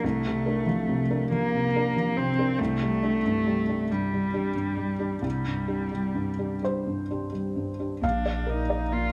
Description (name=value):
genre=neoclassical piano and strings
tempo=42-47 BPM (dotted quarters)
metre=6/8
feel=rubato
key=unclear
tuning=A4 = 440 Hz
part: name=muted cello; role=second line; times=0.0-9.1 s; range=G3 to F4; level=-30 LUFS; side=equal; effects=none
part: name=felt-muted upright piano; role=accompaniment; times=0.0-9.1 s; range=Bb1 to F5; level=-30 LUFS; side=equal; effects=none
part: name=punchy sub bass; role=bass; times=8.0-9.1 s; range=Bb1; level=-32 LUFS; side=equal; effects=none
room=moderate spring reverb, RT60 2.2 s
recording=none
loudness=-27 LUFS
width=mono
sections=0.0-8.0 A section; 8.0-9.1 B section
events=none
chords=0.0 Bbadd9/C; 2.6 Gsus4/C; 8.0 Bb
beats=| 0.03 1.31 | 2.59 3.90 | 5.24 6.64 | 8.03